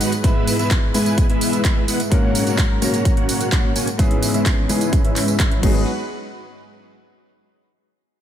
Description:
EDM, festival progressive house; 128 BPM; 4/4; straight; A4 = 442 Hz
warm grand piano; accompaniment; 0.0-5.9 s; G#2 to B4; -25 LUFS; left 1 dB; vintage 12-bit sampler grit, sidechain pumping, digital delay
lush unison pad; sustained chords; 0.0-5.8 s; G#2 to B4; -27 LUFS; equal; chorus, sidechain pumping
dense compressed supersaw; riff; 0.0-5.8 s; G#3 to A#5; -22 LUFS; equal; sidechain pumping, low-pass filter, digital delay
big-room dance drum kit; drums; 0.0-5.7 s; crash cymbal, handclaps, hi-hat, tambourine; -25 LUFS; right 2 dB; overdrive, small room ambience
electronic kick drum; drums; 0.2-5.7 s; -18 LUFS; equal; overdrive, small room ambience
wide detuned saw bass; bass; 5.6-5.8 s; G#1; -22 LUFS; equal; chorus, sidechain pumping
little or no reverb; -16 LUFS; side -10 dB against mid
0.0-5.9 A section; 5.9-7.7 B section
filter sweep on supersaw synth 0.0-5.9; filter sweep on analog synth pad 0.0-5.9
0.2 E/G#; 2.1 F#/G#; 4.0 C#m7/G#; 5.6 G#m7; 5.9 N.C.

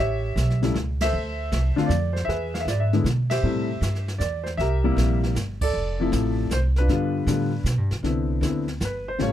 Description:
jazz piano trio; 157 BPM; 3/4; swing 66% on 8ths; C major; A4 = 439 Hz
warm grand piano; melody; 0.0-9.3 s; C3 to F5; -25 LUFS; left 2 dB
upright bass; bass; 0.0-9.3 s; F1 to B2; -24 LUFS; right 1 dB
jazz brush drum kit; drums; 0.4-9.3 s; brushed snare drum, crash cymbal, hi-hat, kick drum, ride cymbal, snare drum; -32 LUFS; right 1 dB
little or no reverb; close, detailed microphones; -21 LUFS; side -11 dB against mid
0.0-8.0 A section; 8.0-9.3 B section
band accent 0.9, 3.2, 5.5; grand piano solo 8.0-9.3
0.0 A7; 1.1 Dm7; 2.3 E7; 3.4 Am7; 4.6 C7; 5.7 Fmaj7; 6.9 G7; 8.0 Cmaj9

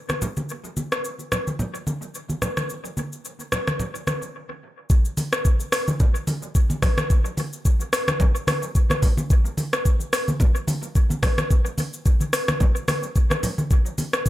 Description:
amapiano; 109 BPM; 4/4; swing 55% on 16ths
afro-pop drum kit; drums; 0.1-14.3 s; hi-hat, kick drum, rim click, shaker; -20 LUFS; equal; dub echo
congas; percussion; 0.1-14.1 s; -27 LUFS; equal; dub echo
little or no reverb; echo-heavy mix; -20 LUFS; side -15 dB against mid
0.0-4.9 A section; 4.9-14.3 B section
break 4.3-4.9; drop 4.9-14.3

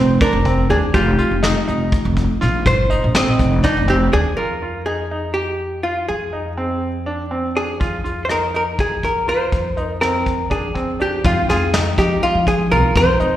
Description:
progressive instrumental, band music in an uneven meter; 245 BPM (eighths); 7/8; straight; F dorian; A4 = 438 Hz
archtop guitar, miked and amplified; melody; 0.0-13.4 s; Eb4 to Eb5; -20 LUFS; equal; slapback echo
mellow tine electric piano; accompaniment; 0.0-4.3, 11.2-13.4 s; G3 to G5; -28 LUFS; equal; medium stereo tremolo, slapback echo
upright bass; bass; 0.0-13.4 s; F1 to F3; -20 LUFS; equal
bright concert grand piano; arpeggios; 0.2-13.3 s; C4 to F4; -23 LUFS; right 1 dB; slapback echo
vintage brush drum kit; drums; 0.2-4.2, 7.8-13.3 s; hi-hat, kick drum, rim click, snare drum; -21 LUFS; equal
moderate club reverb, RT60 0.7 s; live gig heard through the venue's PA, recital hall reverb; -16 LUFS; side -12 dB against mid
0.0-4.4 A section; 4.4-11.2 B section; 11.2-13.4 C section
hollow-body jazz guitar solo 0.0-4.4
0.0 Cm/F; 4.4 Fm7

